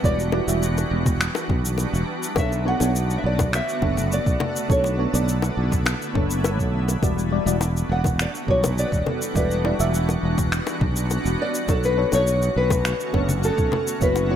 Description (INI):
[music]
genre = sunset chillout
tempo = 103 BPM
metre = 4/4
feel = straight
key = B minor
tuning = A4 = 442 Hz
[part]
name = nylon-string guitar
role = melody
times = 0.0-14.4 s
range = A4 to F#5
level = -26 LUFS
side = left 1 dB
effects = tape echo
[part]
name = mellow FM electric piano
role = accompaniment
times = 0.0-14.4 s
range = G3 to E5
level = -28 LUFS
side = moving between left 6 dB and right 6 dB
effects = chorus, phaser, auto-pan, tape echo
[part]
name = shimmering ambient pad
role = sustained chords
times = 0.0-14.4 s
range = D3 to F#4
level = -28 LUFS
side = right 1 dB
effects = chorus, built-in reverb
[part]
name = sustaining fretless electric bass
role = bass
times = 0.0-14.4 s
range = E1 to B1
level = -23 LUFS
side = right 1 dB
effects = none
[part]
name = electronic kick drum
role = drums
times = 0.0-14.1 s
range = none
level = -24 LUFS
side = right 1 dB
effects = none
[part]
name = electronic shaker, congas and finger snaps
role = drums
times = 0.0-14.3 s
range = none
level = -28 LUFS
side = left 2 dB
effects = none
[part]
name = bongos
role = percussion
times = 0.3-14.3 s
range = none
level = -28 LUFS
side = left 6 dB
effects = none
[sound]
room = light reverb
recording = none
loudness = -20 LUFS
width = side -10 dB against mid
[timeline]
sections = 0.0-14.4 A section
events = none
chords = 0.0 Em9; 2.4 Bm9; 7.0 Em9; 11.7 Bm9